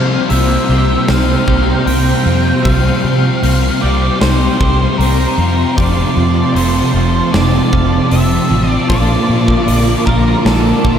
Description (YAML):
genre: rock, shoegaze and dream pop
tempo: 77 BPM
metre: 4/4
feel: straight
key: C mixolydian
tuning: A4 = 438 Hz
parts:
  - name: octave-fuzz lead guitar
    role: melody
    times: 0.0-11.0 s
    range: A4 to G5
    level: -20 LUFS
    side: right 1 dB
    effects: distortion, analog delay
  - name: ensemble organ-string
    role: sustained chords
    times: 0.0-11.0 s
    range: F3 to D6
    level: -21 LUFS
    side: equal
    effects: ensemble chorus
  - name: twelve-string electric guitar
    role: arpeggios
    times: 0.0-11.0 s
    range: F3 to G4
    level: -24 LUFS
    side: right 6 dB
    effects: ensemble chorus, analog delay
  - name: crunchy overdriven guitar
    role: riff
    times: 0.0-11.0 s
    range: F2 to G4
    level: -18 LUFS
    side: right 7 dB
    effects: reverse reverb
  - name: thick fuzz guitar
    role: riff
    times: 0.0-11.0 s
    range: F2 to C4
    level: -17 LUFS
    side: left 8 dB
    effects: distortion, ensemble chorus
  - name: vintage muted fingered electric bass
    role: bass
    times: 0.0-11.0 s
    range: F1 to C3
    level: -15 LUFS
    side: equal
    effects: none
  - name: huge arena drum kit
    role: drums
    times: 0.3-11.0 s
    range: hi-hat, kick drum, snare drum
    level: -19 LUFS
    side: equal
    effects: none
room: moderate huge ambient reverb, RT60 8.5 s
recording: dreamy mix soaked in reverb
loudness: -10 LUFS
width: side -8 dB against mid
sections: 0.0-11.0 A section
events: none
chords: 0.0 C7sus4; 5.8 F; 8.9 Bbmaj7